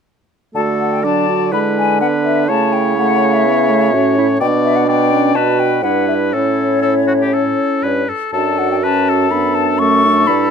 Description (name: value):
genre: quick classical-period movement for wind quintet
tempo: 124 BPM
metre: 4/4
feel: rubato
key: D major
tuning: A4 = 440 Hz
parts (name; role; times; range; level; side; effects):
- hollow concert flute; melody; 0.5-10.5 s; C#5 to C#6; -18 LUFS; left 8 dB; none
- mellow French horn; accompaniment; 0.5-10.5 s; F#3 to D4; -19 LUFS; equal; none
- clear oboe; second line; 0.6-10.5 s; F#4 to D5; -20 LUFS; left 3 dB; none
- clear clarinet; accompaniment; 0.6-10.5 s; C#4 to F#4; -20 LUFS; right 10 dB; none
- warm bassoon; bass; 0.6-10.5 s; F#2 to D3; -19 LUFS; right 4 dB; none
room: light reverb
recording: dark, warm production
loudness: -12 LUFS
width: side -6 dB against mid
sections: 0.6-10.5 A section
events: none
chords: 0.6 D; 1.5 E7/D; 2.5 A/C#; 4.4 G/B; 5.4 Em7/B; 6.3 A; 8.3 D/F#